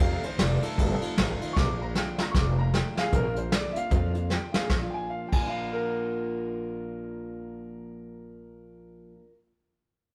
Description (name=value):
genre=rockabilly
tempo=153 BPM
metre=4/4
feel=swing 60% on 8ths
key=Bb major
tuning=A4 = 440 Hz
part: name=clear upright piano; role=melody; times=0.0-9.3 s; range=Ab4 to D6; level=-36 LUFS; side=equal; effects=none
part: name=picked steel-string acoustic guitar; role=accompaniment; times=0.0-9.3 s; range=F2 to F4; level=-38 LUFS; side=equal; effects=none
part: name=upright bass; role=bass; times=0.0-9.1 s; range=F1 to F2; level=-33 LUFS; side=equal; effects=none
part: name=vintage brush drum kit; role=drums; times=0.0-5.4 s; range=crash cymbal, hi-hat, kick drum, ride cymbal, snare drum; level=-30 LUFS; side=equal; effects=none
room=moderate stone room reverb, RT60 1.1 s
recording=rough rehearsal-room recording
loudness=-28 LUFS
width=mono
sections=0.0-3.1 A section; 3.1-4.7 B section; 4.7-7.8 C section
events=drum fill 1.6-3.1, 4.3-4.7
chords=0.0 F7; 1.6 Bb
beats=| 0.00 0.39 0.78 1.17 | 1.56 1.96 2.35 2.74 | 3.13 3.52 3.92 4.31 | 4.70 5.09 5.49 5.88 | 6.27 6.67 7.06 7.45